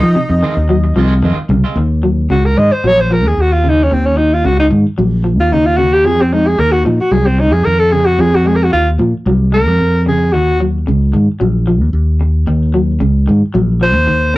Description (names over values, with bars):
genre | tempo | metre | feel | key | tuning
afrobeat | 112 BPM | 4/4 | straight | Eb dorian | A4 = 437 Hz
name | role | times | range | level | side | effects
clear tenor saxophone | melody | 0.0-1.2 s | Eb4 | -21 LUFS | equal | none
bright trumpet | second line | 0.0-1.2 s | Eb5 | -24 LUFS | right 2 dB | none
electric guitar at the edge of break-up | stabs | 0.0-1.8 s | Eb3 to F4 | -23 LUFS | right 3 dB | harmonic tremolo
fingered electric bass | bass | 0.0-14.4 s | Bb1 to F3 | -12 LUFS | equal | none
electric guitar at the edge of break-up | arpeggios | 0.2-14.4 s | C3 to Ab3 | -19 LUFS | left 1 dB | harmonic tremolo
breathy alto saxophone | melody | 2.3-10.6, 13.8-14.4 s | C4 to Eb5 | -12 LUFS | equal | none
room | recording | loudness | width
light reverb | rough rehearsal-room recording, warm saturation | -10 LUFS | side -18 dB against mid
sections
0.0-1.8 A section; 1.8-14.4 B section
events
alto saxophone solo 1.8-14.4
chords
0.0 Fm7; 1.8 Ebm7; 6.0 Fm7; 10.3 Ebm7